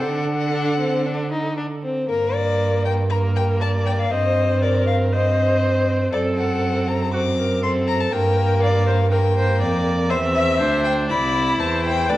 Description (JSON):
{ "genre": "quick classical-period movement for string quartet", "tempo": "120 BPM", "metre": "4/4", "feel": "rubato", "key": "G minor", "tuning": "A4 = 441 Hz", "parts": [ { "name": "rich violin", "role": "melody", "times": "0.0-12.2 s", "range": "Bb4 to D6", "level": "-24 LUFS", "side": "left 4 dB", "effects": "none" }, { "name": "clear violin", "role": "second line", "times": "0.0-12.2 s", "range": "Bb3 to A4", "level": "-23 LUFS", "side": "left 1 dB", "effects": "none" }, { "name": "rich viola", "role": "accompaniment", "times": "0.0-12.2 s", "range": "F#4 to E5", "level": "-25 LUFS", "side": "right 2 dB", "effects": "none" }, { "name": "rich cello", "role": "bass", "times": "0.0-12.2 s", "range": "C2 to D3", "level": "-22 LUFS", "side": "right 2 dB", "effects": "none" } ], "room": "wet recital hall reverb, RT60 1.5 s", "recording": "worn, warbling old tape, cassette tape, warbly pitch drift", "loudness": "-18 LUFS", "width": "side -15 dB against mid", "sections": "0.0-2.1 A section; 2.1-12.2 B section", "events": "none", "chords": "0.0 D; 2.1 Gm; 4.1 Cm/G; 6.1 D7/F#; 8.1 Gm; 10.1 C/E; 11.1 C" }